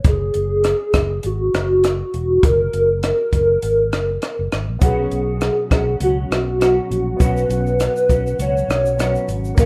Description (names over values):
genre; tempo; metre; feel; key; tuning
indie pop, bedroom pop; 101 BPM; 4/4; swing 55% on 16ths; unclear; A4 = 440 Hz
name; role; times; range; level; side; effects
fingered electric bass; bass; 0.0-9.7 s; E1 to C#2; -25 LUFS; equal; none
compact cocktail drum kit; drums; 0.0-9.7 s; hi-hat, kick drum, rim click, shaker; -21 LUFS; equal; none
hollow clarinet-like synth lead; melody; 0.1-9.7 s; F#4 to C#5; -21 LUFS; equal; analog chorus, tape echo
clean electric guitar; accompaniment; 4.8-9.7 s; A#2 to F#4; -29 LUFS; equal; ensemble chorus, warbly pitch drift, plate reverb
warm upright piano; accompaniment; 4.8-9.7 s; A#3 to B4; -33 LUFS; equal; cassette tape, plate reverb
room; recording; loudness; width
wet studio reverb, RT60 0.6 s; rough home demo mix; -18 LUFS; mono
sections
0.0-9.7 A section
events
none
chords
0.1 F#; 4.8 Bsus2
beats
| 0.05 0.65 1.24 1.84 | 2.44 3.03 3.63 4.22 | 4.82 5.42 6.01 6.61 | 7.20 7.80 8.39 8.99 | 9.58